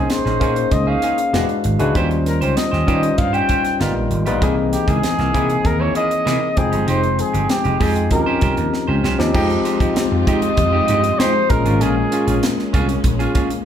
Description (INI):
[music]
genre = polished 1980s jazz-funk pop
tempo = 97 BPM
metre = 4/4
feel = straight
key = unclear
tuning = A4 = 443 Hz
[part]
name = warm flugelhorn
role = melody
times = 0.0-12.4 s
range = G4 to G5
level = -21 LUFS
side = equal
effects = ping-pong delay
[part]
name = barky tine electric piano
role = accompaniment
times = 0.0-13.7 s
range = E3 to G5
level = -21 LUFS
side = left 3 dB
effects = none
[part]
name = semi-hollow electric guitar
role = riff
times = 0.0-13.5 s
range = Ab3 to C5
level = -25 LUFS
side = right 3 dB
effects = none
[part]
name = vintage slap bass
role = bass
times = 0.0-13.3 s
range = E1 to F3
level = -21 LUFS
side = right 1 dB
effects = none
[part]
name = tight funk drum kit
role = drums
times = 0.1-13.6 s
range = crash cymbal, hi-hat, kick drum, snare drum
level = -22 LUFS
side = equal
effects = none
[part]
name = warm studio string section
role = sustained chords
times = 9.3-13.7 s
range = F3 to G4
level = -29 LUFS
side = left 1 dB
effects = none
[sound]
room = wet large studio reverb, RT60 0.9 s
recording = band playing live in one room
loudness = -15 LUFS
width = side -9 dB against mid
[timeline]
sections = 0.0-9.3 A section; 9.3-13.7 B section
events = drum fill 8.7-9.3; tine electric piano fill 13.0-13.7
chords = 0.0 Bbm11; 1.3 E9; 1.9 Eb13; 3.8 G7alt; 4.4 C7alt; 6.6 Fm9; 8.1 Eb13; 9.3 Fm9; 11.5 Bbm7